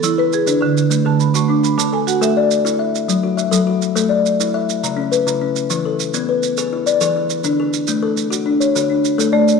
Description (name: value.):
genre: southern african traditional, mbira-style interlocking cycle.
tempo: 138 BPM (dotted quarters).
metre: 12/8.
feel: straight.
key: unclear.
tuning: A4 = 440 Hz.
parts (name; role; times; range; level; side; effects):
kalimba; arpeggios; 0.0-9.6 s; C#3 to E5; -16 LUFS; left 5 dB; none.
marimba with hard mallets; arpeggios; 0.0-2.5, 9.3-9.6 s; D3 to D6; -17 LUFS; right 10 dB; none.
maracas; percussion; 0.0-9.6 s; none; -24 LUFS; right 12 dB; none.
room: wet echo chamber reverb, RT60 1.9 s, small room reverb.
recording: 1960s-style stereo.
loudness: -15 LUFS.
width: side -5 dB against mid.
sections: 0.0-2.2 A section; 2.2-9.6 B section.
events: marimba fill 0.9-2.2.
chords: 0.5 D; 2.2 A5; 3.1 F#m; 4.0 A5; 4.8 C#m; 5.7 E; 7.4 D.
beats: 0.04 | 0.47 0.91 1.35 1.78 | 2.22 2.65 3.09 3.53 | 3.96 4.40 4.83 5.27 | 5.70 6.14 6.57 7.01 | 7.44 7.88 8.31 8.75 | 9.18.